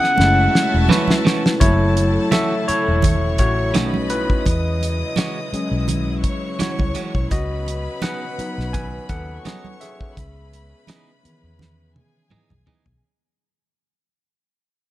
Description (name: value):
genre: lush 1970s-style soul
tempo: 84 BPM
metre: 4/4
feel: swing 54% on 16ths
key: F# dorian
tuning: A4 = 440 Hz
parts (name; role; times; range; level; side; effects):
- warm flugelhorn; melody; 0.0-0.9 s; F#5; -18 LUFS; equal; none
- warm chamber violin section; second line; 0.0-13.0 s; E4 to D#6; -30 LUFS; left 1 dB; none
- overdriven tine electric piano; accompaniment; 0.0-13.0 s; D#3 to G#5; -22 LUFS; left 1 dB; none
- warm studio string section; sustained chords; 0.0-13.0 s; C#3 to D#5; -33 LUFS; left 2 dB; stereo widening
- damped 70s drum kit; drums; 0.0-13.0 s; hi-hat, kick drum, snare drum, toms; -20 LUFS; equal; none
- vintage muted fingered electric bass; bass; 0.2-13.0 s; E1 to E2; -22 LUFS; equal; none
- congas; percussion; 0.2-12.9 s; none; -26 LUFS; right 5 dB; none
- clean electric guitar; riff; 0.9-12.8 s; D#3 to G#4; -24 LUFS; right 5 dB; none
room: studio reverb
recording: dark, warm production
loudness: -17 LUFS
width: side -15 dB against mid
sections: 0.0-1.6 A section; 1.6-13.0 B section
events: drum fill 0.2-1.6, 11.6-13.0; fade-out 1.6-13.0; tine electric piano solo 1.6-13.0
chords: 0.2 F#m7; 3.7 B9; 4.5 E69; 7.3 C#9sus4; 10.2 C#m9